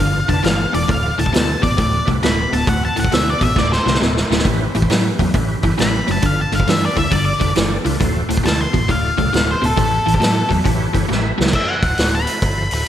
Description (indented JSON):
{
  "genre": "blues rock power trio and southern rock",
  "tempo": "135 BPM",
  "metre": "4/4",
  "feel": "swing 66% on 8ths",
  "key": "D mixolydian",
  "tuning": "A4 = 439 Hz",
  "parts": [
    { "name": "octave-fuzz lead guitar", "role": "melody", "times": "0.0-12.9 s", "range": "A4 to C6", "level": "-21 LUFS", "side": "left 1 dB", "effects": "distortion, slapback echo, digital delay" },
    { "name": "overdriven tonewheel organ", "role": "sustained chords", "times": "0.0-12.8 s", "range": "B3 to E5", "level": "-27 LUFS", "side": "right 2 dB", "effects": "slow rotary speaker, chorus vibrato" },
    { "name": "overdriven electric guitar", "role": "riff", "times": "0.0-11.5 s", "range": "D2 to F#3", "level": "-21 LUFS", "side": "left 1 dB", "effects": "slapback echo" },
    { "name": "vintage muted fingered electric bass", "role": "bass", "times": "0.0-12.9 s", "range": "D1 to A2", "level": "-22 LUFS", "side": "equal", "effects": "none" },
    { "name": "vintage drum kit", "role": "drums", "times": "0.3-12.8 s", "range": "crash cymbal, hi-hat, kick drum, snare drum", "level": "-19 LUFS", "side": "equal", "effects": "none" }
  ],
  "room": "moderate concert hall reverb, RT60 1.8 s, small room ambience",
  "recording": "big arena sound",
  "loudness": "-14 LUFS",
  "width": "side -10 dB against mid",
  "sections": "0.0-11.5 A section; 11.5-12.9 B section",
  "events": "drum fill 3.6-4.5, 11.1-11.5; lead electric guitar solo 11.5-12.9",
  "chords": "0.0 G7; 0.9 D7; 4.5 A7; 6.2 G7; 8.0 D7; 9.8 A7; 11.5 D7"
}